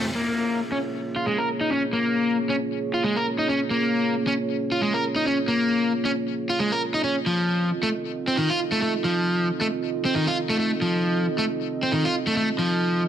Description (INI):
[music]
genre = breakbeat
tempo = 135 BPM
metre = 4/4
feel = swing 56% on 16ths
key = Bb minor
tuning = A4 = 440 Hz
[part]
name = dark analog pad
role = sustained chords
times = 0.0-13.1 s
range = A3 to Eb5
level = -28 LUFS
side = right 2 dB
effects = chorus
[part]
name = crunchy overdriven guitar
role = riff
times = 0.0-13.0 s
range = Eb3 to Bb4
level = -22 LUFS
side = left 1 dB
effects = low-pass filter, ping-pong delay
[sound]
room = moderate small room reverb, RT60 0.5 s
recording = dense, heavily limited modern master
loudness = -21 LUFS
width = side -10 dB against mid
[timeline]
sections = 0.2-13.1 A section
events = none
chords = 0.2 Bbm7; 7.3 F7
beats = | 0.15 0.59 1.04 1.48 | 1.93 2.37 2.82 3.26 | 3.71 4.15 4.59 5.04 | 5.48 5.93 6.37 6.82 | 7.26 7.71 8.15 8.60 | 9.04 9.48 9.93 10.37 | 10.82 11.26 11.71 12.15 | 12.60 13.04